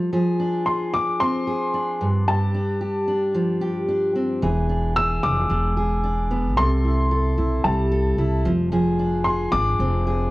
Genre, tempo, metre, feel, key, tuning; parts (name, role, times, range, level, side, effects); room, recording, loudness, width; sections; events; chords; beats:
acoustic pop; 112 BPM; 4/4; straight; A4 = 441 Hz
fingerpicked steel-string acoustic guitar; accompaniment; 0.0-10.3 s; G2 to A4; -22 LUFS; equal
dark upright piano; melody; 0.7-10.3 s; A5 to E6; -24 LUFS; left 1 dB
upright bass; bass; 4.4-10.3 s; E1 to C2; -23 LUFS; equal
light reverb; worn, warbling old tape, cassette tape, warbly pitch drift; -19 LUFS; side -18 dB against mid
0.0-10.3 A section
0.0 Fm6; 2.0 G7sus4; 4.4 E7; 6.6 Am7; 8.5 Fm6
| 0.13 0.67 1.21 1.74 | 2.28 2.82 3.35 3.89 | 4.43 4.97 5.50 6.04 | 6.58 7.11 7.65 8.19 | 8.72 9.26 9.80